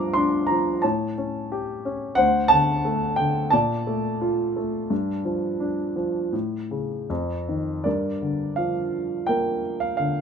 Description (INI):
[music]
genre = classical, lyrical solo piano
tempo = 76-90 BPM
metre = 4/4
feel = rubato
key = G minor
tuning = A4 = 440 Hz
[part]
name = dark grand piano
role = solo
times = 0.0-10.2 s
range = D2 to D6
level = -22 LUFS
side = equal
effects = none
[sound]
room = light reverb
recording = minimal, uncompressed stereo recording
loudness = -22 LUFS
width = side -6 dB against mid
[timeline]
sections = 0.0-7.9 A section; 7.9-10.2 B section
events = none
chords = 0.0 G5; 0.8 A7; 2.2 D5; 3.5 Bbmaj7; 4.9 G5; 6.3 A; 7.1 Ebsus2/F; 7.9 Gm7